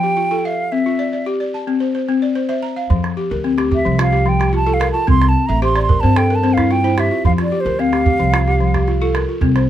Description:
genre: west african traditional, West African string and xylophone music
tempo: 110 BPM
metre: 4/4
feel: straight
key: F major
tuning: A4 = 440 Hz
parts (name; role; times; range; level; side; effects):
- mellow hollow silver concert flute; melody; 0.0-9.1 s; C5 to C6; -19 LUFS; right 2 dB; none
- balafon; arpeggios; 0.0-9.7 s; F3 to Bb5; -18 LUFS; left 3 dB; none
- upright bass; bass; 2.9-9.7 s; A1 to G2; -18 LUFS; right 1 dB; none
- calabash; percussion; 2.9-9.7 s; none; -20 LUFS; right 3 dB; none
room: little or no reverb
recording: close, detailed microphones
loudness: -14 LUFS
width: side -11 dB against mid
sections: 0.0-2.9 A section; 2.9-9.7 B section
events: flute solo 2.9-9.7; balafon fill 5.5-7.2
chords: 0.0 F; 0.7 C; 2.9 F; 5.1 C5; 7.2 F

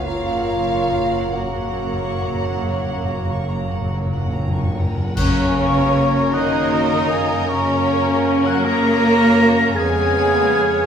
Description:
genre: classical, slow romantic movement for symphony orchestra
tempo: 46-55 BPM (dotted quarters)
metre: 12/8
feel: rubato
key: F# major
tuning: A4 = 438 Hz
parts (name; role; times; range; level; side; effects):
- rich studio violin section; melody; 0.0-10.9 s; A#4 to F#5; -29 LUFS; right 1 dB; none
- clear clarinet; second line; 0.0-10.9 s; C#4 to A#4; -26 LUFS; left 1 dB; none
- mellow cor anglais; second line; 0.0-10.9 s; A#4 to G#5; -29 LUFS; right 3 dB; none
- mellow hollow silver concert flute; second line; 0.0-10.9 s; A#5 to A#6; -25 LUFS; left 4 dB; none
- rich chamber violin section; second line; 0.0-10.9 s; C#5 to C#6; -29 LUFS; left 1 dB; none
- mellow bassoon; accompaniment; 0.0-4.8 s; A#3; -31 LUFS; right 6 dB; none
- rich chamber viola section; accompaniment; 0.0-10.9 s; F#3 to A#4; -27 LUFS; equal; none
- dark French horn section; sustained chords; 0.0-10.9 s; C#4 to G#4; -26 LUFS; left 2 dB; none
- warm chamber cello section; bass; 0.0-10.9 s; F#2 to A#3; -23 LUFS; right 1 dB; none
- warm studio double bass section; bass; 0.0-10.9 s; F#1 to F#2; -28 LUFS; right 2 dB; none
- bright trombone section; sustained chords; 0.1-10.9 s; C#3 to B3; -28 LUFS; right 3 dB; none
- cymbal swell, clash cymbals and concert bass drum; percussion; 0.1-6.7 s; none; -27 LUFS; left 1 dB; none
- timpani; percussion; 0.1-6.3 s; F#2; -24 LUFS; left 1 dB; none
- warm trumpet; stabs; 5.2-10.9 s; C#4 to A#4; -23 LUFS; equal; none
room: wet stone room reverb, RT60 1.2 s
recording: heard from further back in the room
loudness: -16 LUFS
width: side -8 dB against mid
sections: 0.0-5.2 A section; 5.2-10.9 A section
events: timpani fill 0.1-5.2; band accent 5.2-5.9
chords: 0.1 F#; 9.8 C#7/E#

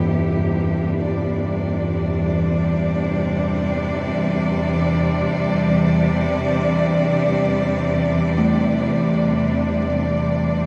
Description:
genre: dark ambient drone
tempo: free time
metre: none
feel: none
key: unclear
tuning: A4 = 440 Hz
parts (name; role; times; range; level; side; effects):
- bright studio cello section; sustained chords; 0.0-10.7 s; E2 to D5; -22 LUFS; equal; shimmer reverb
- gamelan-type bossed gongs; arpeggios; 0.0-10.7 s; G2 to A3; -29 LUFS; equal; tape echo
- deep rumbling drone; drone; 0.0-10.7 s; E2 to E3; -24 LUFS; equal; built-in reverb
- bronze singing bowl; texture; 0.0-10.7 s; G4; -39 LUFS; equal; none
room: wet cathedral reverb, RT60 5.3 s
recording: in a vast, echoing space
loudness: -20 LUFS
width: mono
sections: 0.0-10.7 A section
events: none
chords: 0.0 Csus2/E

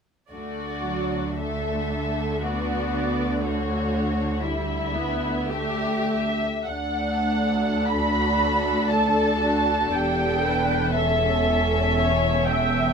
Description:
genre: classical, slow romantic movement for string orchestra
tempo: 56 BPM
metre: 3/4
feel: uneven beats, rubato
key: D major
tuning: A4 = 438 Hz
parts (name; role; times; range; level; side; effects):
- muted symphonic violin section; melody; 0.3-12.9 s; C#5 to B5; -26 LUFS; equal; none
- muted symphonic violin section; second line; 0.3-12.9 s; C#4 to A4; -28 LUFS; left 1 dB; none
- muted symphonic viola section; accompaniment; 0.3-12.9 s; F#3 to E5; -28 LUFS; equal; none
- muted symphonic cello section; bass; 0.3-12.9 s; D2 to D3; -29 LUFS; right 1 dB; none
- muted symphonic double bass section; bass; 0.3-12.9 s; E1 to D2; -30 LUFS; right 1 dB; none
room: light reverb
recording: minimal, uncompressed stereo recording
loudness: -21 LUFS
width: side -6 dB against mid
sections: 0.3-6.7 A section; 6.7-12.9 B section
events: none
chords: 0.3 D; 3.4 A7/D; 6.7 D; 10.0 A7/E

